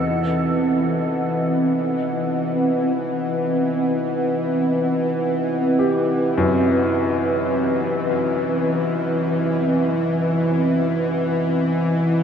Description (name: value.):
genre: dark ambient drone.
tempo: free time.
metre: none.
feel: none.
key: unclear.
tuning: A4 = 441 Hz.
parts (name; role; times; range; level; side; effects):
dark analog pad; sustained chords; 0.0-12.2 s; C4 to F#5; -21 LUFS; equal; chorus.
bowed-like drone; drone; 0.0-12.2 s; E2 to E3; -22 LUFS; equal; built-in reverb.
clear grand piano; arpeggios; 5.8-12.2 s; F#2 to G4; -26 LUFS; left 3 dB; tape echo.
room: wet huge ambient reverb, RT60 9.3 s.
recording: nothing above 10.7 kHz.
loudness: -18 LUFS.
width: side -7 dB against mid.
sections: 0.0-12.2 A section.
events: none.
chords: 0.0 Cm.